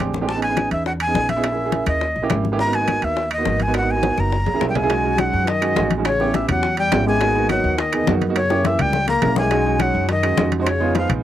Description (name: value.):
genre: Afro-Cuban jazz.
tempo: 208 BPM.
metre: 4/4.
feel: straight.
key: unclear.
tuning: A4 = 442 Hz.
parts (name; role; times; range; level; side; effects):
warm concert grand piano; accompaniment; 0.0-11.2 s; G#3 to E5; -23 LUFS; right 6 dB; cassette tape.
upright bass; bass; 0.0-11.2 s; F#1 to F#2; -24 LUFS; equal; none.
bongos; percussion; 0.0-11.1 s; none; -27 LUFS; left 7 dB; none.
congas; percussion; 0.1-11.2 s; none; -27 LUFS; left 6 dB; none.
breathy bright jazz flute; melody; 0.3-11.1 s; B#4 to A#5; -22 LUFS; equal; cassette tape.
timbales; percussion; 0.4-11.2 s; none; -27 LUFS; right 8 dB; none.
claves; percussion; 0.6-11.2 s; none; -34 LUFS; left 6 dB; none.
breathy trombone; second line; 4.7-11.1 s; B#2 to A#3; -25 LUFS; left 6 dB; cassette tape.
room: moderate booth ambience, RT60 0.2 s.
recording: home recording on cassette.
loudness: -17 LUFS.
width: side -12 dB against mid.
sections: 0.0-4.9 A section; 4.9-11.2 B section.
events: drum fill 0.0, 4.0-4.9, 8.4-9.5; grand piano fill 4.5-4.9.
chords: 0.3 Amaj9#11; 1.4 A#m7b5; 2.0 D#7b9; 2.6 G#m9; 4.3 F#7; 4.9 B69; 6.1 A9; 7.2 G#m7; 8.4 F#7b9; 9.5 B69; 10.7 Fm7b5.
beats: 0.00 | 0.28 0.57 0.86 1.15 | 1.44 1.73 2.01 2.30 | 2.59 2.88 3.17 3.46 | 3.75 4.03 4.32 4.61 | 4.90 5.19 5.48 5.76 | 6.05 6.34 6.63 6.92 | 7.21 7.49 7.78 8.07 | 8.36 8.65 8.94 9.22 | 9.51 9.80 10.09 10.38 | 10.66 10.95.